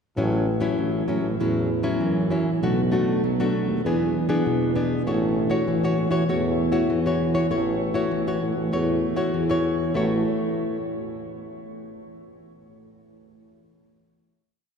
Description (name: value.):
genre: samba and choro.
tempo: 98 BPM.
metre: 4/4.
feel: straight.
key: A major.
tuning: A4 = 444 Hz.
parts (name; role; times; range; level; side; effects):
nylon-string guitar; accompaniment; 0.2-10.8 s; A2 to C#5; -24 LUFS; left 2 dB; none.
warm tuba; bass; 0.2-10.2 s; A1 to B2; -25 LUFS; right 1 dB; none.
room: wet cathedral reverb, RT60 5.5 s.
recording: recorded in a church or concert hall.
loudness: -21 LUFS.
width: side -6 dB against mid.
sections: 0.2-10.0 A section; 10.0-12.4 final chord.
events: none.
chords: 0.2 A6; 2.6 Bm7; 3.9 E7; 5.1 A6.